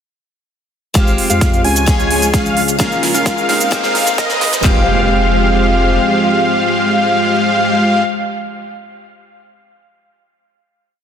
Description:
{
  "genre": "EDM, festival progressive house",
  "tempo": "130 BPM",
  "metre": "4/4",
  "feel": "straight",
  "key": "F minor",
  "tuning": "A4 = 440 Hz",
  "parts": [
    { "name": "picked steel-string acoustic guitar", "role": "accompaniment", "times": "0.9-8.0 s", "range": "Ab3 to Ab4", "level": "-21 LUFS", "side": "left 2 dB", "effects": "sidechain pumping, dub echo" },
    { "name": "lush unison pad", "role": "sustained chords", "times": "1.6-8.0 s", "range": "C3 to G4", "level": "-23 LUFS", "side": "equal", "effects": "chorus, sidechain pumping" },
    { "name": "wide unison lead", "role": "arpeggios", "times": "1.0-8.0 s", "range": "Eb5 to Ab5", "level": "-17 LUFS", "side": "left 1 dB", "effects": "sidechain pumping, dub echo" },
    { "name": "dense compressed supersaw", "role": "riff", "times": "1.0-8.0 s", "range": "Ab3 to Ab5", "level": "-18 LUFS", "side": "equal", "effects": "vintage 12-bit sampler grit, sidechain pumping, low-pass filter, dub echo" },
    { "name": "saturated sub bass", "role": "bass", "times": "1.0-6.0 s", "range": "F1 to F2", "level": "-20 LUFS", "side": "equal", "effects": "sidechain pumping" },
    { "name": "big-room dance drum kit", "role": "drums", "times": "1.0-4.8 s", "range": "handclaps, kick drum", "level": "-15 LUFS", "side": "equal", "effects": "overdrive, small room ambience" },
    { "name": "big-room dance drum kit", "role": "drums", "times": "1.0-4.6 s", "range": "cabasa, hi-hat, snare drum", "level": "-20 LUFS", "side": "right 3 dB", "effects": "high-pass filter on snare, small room ambience, high-pass filter on hats, high-pass filter on perc" },
    { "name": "riser and impact", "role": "sound effects", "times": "2.6-8.1 s", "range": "none", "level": "-26 LUFS", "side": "right 2 dB", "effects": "none" }
  ],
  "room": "moderate lush hall reverb, RT60 1.9 s, digital ambience",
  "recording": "dense, heavily limited modern master, high-pass filter",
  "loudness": "-11 LUFS",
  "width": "side -8 dB against mid",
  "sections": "1.0-4.6 build; 4.6-8.3 final chord",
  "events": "build-up 1.0-4.6; drum fill 1.0-4.6; filter sweep on supersaw synth 1.0-4.6; filter sweep 1.0-4.6; riser 2.6-4.6",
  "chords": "1.0 Fmadd9; 1.9 Db; 2.8 Bbm7; 3.7 Abadd9; 4.6 Fmadd9"
}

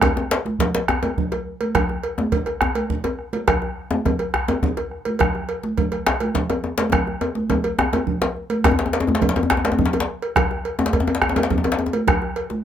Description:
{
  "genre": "west african traditional, West African drum ensemble",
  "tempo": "139 BPM (dotted quarters)",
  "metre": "12/8",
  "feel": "straight",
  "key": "none",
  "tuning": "none",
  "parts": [
    { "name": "bombo", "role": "percussion", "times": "0.0-12.2 s", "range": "none", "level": "-23 LUFS", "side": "right 2 dB", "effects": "none" },
    { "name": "congas", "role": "percussion", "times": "0.0-12.6 s", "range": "none", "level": "-26 LUFS", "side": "right 3 dB", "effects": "none" },
    { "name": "cowbell", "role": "percussion", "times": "0.0-12.5 s", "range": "none", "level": "-26 LUFS", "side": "right 2 dB", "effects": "none" },
    { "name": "djembe", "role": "percussion", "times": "0.0-12.6 s", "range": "none", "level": "-29 LUFS", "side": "left 3 dB", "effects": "none" },
    { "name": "djembe", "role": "percussion", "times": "0.0-12.0 s", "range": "none", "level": "-22 LUFS", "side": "left 3 dB", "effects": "none" }
  ],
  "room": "moderate small room reverb, RT60 0.5 s",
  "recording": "none",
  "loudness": "-19 LUFS",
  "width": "side -9 dB against mid",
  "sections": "0.0-8.6 A section; 8.6-12.6 B section",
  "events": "drum fill 6.9-8.6",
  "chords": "none"
}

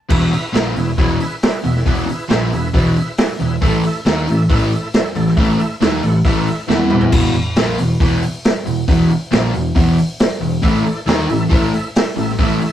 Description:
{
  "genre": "blues rock power trio and southern rock",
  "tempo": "137 BPM",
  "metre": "4/4",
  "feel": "straight",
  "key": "unclear",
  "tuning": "A4 = 440 Hz",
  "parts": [
    { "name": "overdriven tonewheel organ", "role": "sustained chords", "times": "0.1-7.1, 10.6-12.7 s", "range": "A3 to F#5", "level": "-26 LUFS", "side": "right 2 dB", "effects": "slow rotary speaker, chorus vibrato" },
    { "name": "overdriven semi-hollow guitar", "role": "riff", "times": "0.1-12.6 s", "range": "E2 to E4", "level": "-16 LUFS", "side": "equal", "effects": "none" },
    { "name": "growling fingered electric bass", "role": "bass", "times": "0.1-12.6 s", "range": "E1 to E2", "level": "-25 LUFS", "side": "equal", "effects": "overdrive" },
    { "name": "raw garage drum kit", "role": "drums", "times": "0.1-12.7 s", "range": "crash cymbal, hi-hat, kick drum, snare drum, toms", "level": "-17 LUFS", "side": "equal", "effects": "none" }
  ],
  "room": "moderate studio reverb, RT60 0.5 s",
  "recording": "rough rehearsal-room recording",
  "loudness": "-13 LUFS",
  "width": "side -11 dB against mid",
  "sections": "0.1-7.1 A section; 7.1-12.7 A section",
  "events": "drum fill 6.7-7.1",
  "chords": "0.1 E; 3.6 A5; 6.7 E5; 10.6 A5"
}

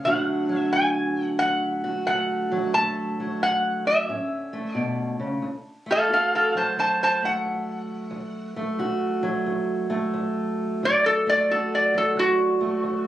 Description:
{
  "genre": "acoustic country blues, solo or duo",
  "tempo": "89 BPM",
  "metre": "4/4",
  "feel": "swing 65% on 8ths",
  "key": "D major",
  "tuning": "A4 = 440 Hz",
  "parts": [
    { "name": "metal-body resonator slide guitar", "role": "melody", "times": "0.0-13.1 s", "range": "F#4 to A5", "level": "-22 LUFS", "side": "equal", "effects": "none" },
    { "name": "fingerpicked steel-string acoustic guitar", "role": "accompaniment", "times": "0.0-13.1 s", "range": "D2 to F#4", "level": "-26 LUFS", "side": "right 1 dB", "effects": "none" }
  ],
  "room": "wet booth ambience, RT60 0.3 s",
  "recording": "recorded on a phone in the room, studio reverb, compression",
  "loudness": "-21 LUFS",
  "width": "side -13 dB against mid",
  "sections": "0.0-5.4 A section; 5.4-13.1 B section",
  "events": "resonator guitar played with a steel bar solo 5.4-13.1",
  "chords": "0.0 D; 4.1 A; 5.4 D"
}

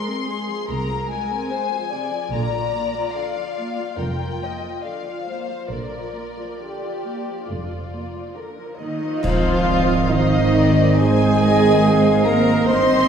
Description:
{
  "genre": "cinematic, emotional film score for orchestra",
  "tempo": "70 BPM",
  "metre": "4/4",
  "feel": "uneven beats, rubato",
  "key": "Ab lydian",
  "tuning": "A4 = 441 Hz",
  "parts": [
    { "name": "dark studio violin section", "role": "melody", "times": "0.0-13.1 s", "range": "Bb4 to C6", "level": "-30 LUFS", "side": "left 6 dB", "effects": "none" },
    { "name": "dark chamber violin section", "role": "second line", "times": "0.0-13.1 s", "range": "F4 to C6", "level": "-27 LUFS", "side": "left 4 dB", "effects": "none" },
    { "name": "dark studio viola section", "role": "accompaniment", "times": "0.0-13.1 s", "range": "C3 to C5", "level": "-24 LUFS", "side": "right 2 dB", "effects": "none" },
    { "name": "dark studio cello section", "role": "bass", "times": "0.7-13.1 s", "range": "C2 to C4", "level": "-22 LUFS", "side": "right 2 dB", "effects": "none" },
    { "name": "dark studio double bass section", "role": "bass", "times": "0.7-13.1 s", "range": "F1 to C2", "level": "-24 LUFS", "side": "right 3 dB", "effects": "none" },
    { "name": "cymbal swell, clash cymbals and concert bass drum", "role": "percussion", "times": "5.7-11.0 s", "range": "none", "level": "-28 LUFS", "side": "left 1 dB", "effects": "none" },
    { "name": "concert flute", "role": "second line", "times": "9.2-13.1 s", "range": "C5 to F5", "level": "-26 LUFS", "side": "left 1 dB", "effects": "none" },
    { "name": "warm clarinet", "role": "second line", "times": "9.2-13.1 s", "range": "C5", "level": "-29 LUFS", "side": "left 1 dB", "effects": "none" },
    { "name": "warm oboe", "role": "second line", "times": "9.2-13.1 s", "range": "Eb5", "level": "-26 LUFS", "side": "equal", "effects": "none" },
    { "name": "warm French horn section", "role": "sustained chords", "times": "9.2-13.1 s", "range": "Eb3 to C4", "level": "-22 LUFS", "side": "equal", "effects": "none" }
  ],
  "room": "wet scoring stage reverb, RT60 1.7 s",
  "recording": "heard from further back in the room",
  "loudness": "-17 LUFS",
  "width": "side -8 dB against mid",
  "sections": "0.0-9.2 A section; 9.2-13.1 A section",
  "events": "band accent 9.2-10.1",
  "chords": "0.0 Fm; 2.3 Bb; 9.2 Ab"
}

